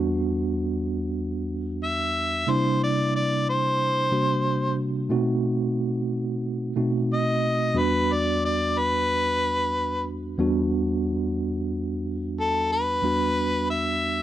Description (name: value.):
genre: blues.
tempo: 91 BPM.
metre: 4/4.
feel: swing 54% on 16ths.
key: E minor.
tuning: A4 = 440 Hz.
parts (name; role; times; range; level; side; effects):
tine electric piano; accompaniment; 0.0-14.2 s; E2 to F#4; -24 LUFS; right 1 dB; medium stereo tremolo.
clear harmonica; melody; 1.8-14.2 s; A4 to E5; -24 LUFS; left 1 dB; overdrive.
room: studio reverb.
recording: dry, close 1970s-style studio recording.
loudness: -22 LUFS.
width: side -12 dB against mid.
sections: 0.0-13.0 A section; 13.0-14.2 B section.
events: harmonica solo 0.0-13.0.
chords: 0.0 Em7; 2.5 C7; 5.1 B7b9; 7.8 Em7.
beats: 0.50 1.16 1.81 | 2.47 3.13 3.79 4.45 | 5.11 5.77 6.43 7.09 | 7.75 8.41 9.07 9.73 | 10.39 11.05 11.72 12.38 | 13.04 13.70.